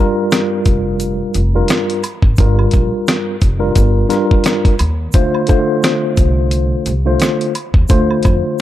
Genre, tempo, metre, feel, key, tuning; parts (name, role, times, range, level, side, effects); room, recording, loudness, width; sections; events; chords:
hip hop, boom-bap hip-hop; 87 BPM; 4/4; swing 56% on 16ths; G minor; A4 = 444 Hz
mellow tine electric piano; accompaniment; 0.0-8.6 s; G2 to C5; -16 LUFS; left 1 dB; fast stereo tremolo, high-pass filter, low-pass filter
dusty soul sampler-style drum kit; drums; 0.3-8.4 s; hi-hat, kick drum, rim click, snare drum; -14 LUFS; equal
tube shaker and woodblock; percussion; 0.3-8.6 s; -30 LUFS; right 6 dB
upright bass; bass; 0.7-8.4 s; F1 to F2; -16 LUFS; equal
small room ambience; dark, warm production; -12 LUFS; side -13 dB against mid
0.0-8.6 A section
0.0 Gm7; 5.1 Dm7